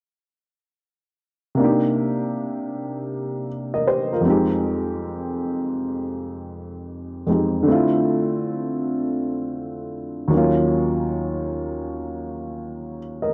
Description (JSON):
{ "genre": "hip hop", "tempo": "79 BPM", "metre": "4/4", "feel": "swing 63% on 16ths", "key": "C minor", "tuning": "A4 = 440 Hz", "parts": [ { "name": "dark upright piano", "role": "accompaniment", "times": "1.5-13.3 s", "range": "Eb2 to Eb5", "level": "-23 LUFS", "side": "equal", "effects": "cassette tape" } ], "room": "moderate spring reverb, RT60 1.7 s, small room ambience", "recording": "dry, gritty hardware recording", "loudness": "-23 LUFS", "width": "mono", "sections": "1.6-13.3 A section", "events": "none", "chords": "1.6 Cm9; 4.2 Fm9; 7.7 Dm9; 10.3 Ebm9", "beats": "| 1.59 2.35 3.11 3.87 | 4.63 5.39 6.15 6.91 | 7.67 8.43 9.18 9.94 | 10.70 11.46 12.22 12.98" }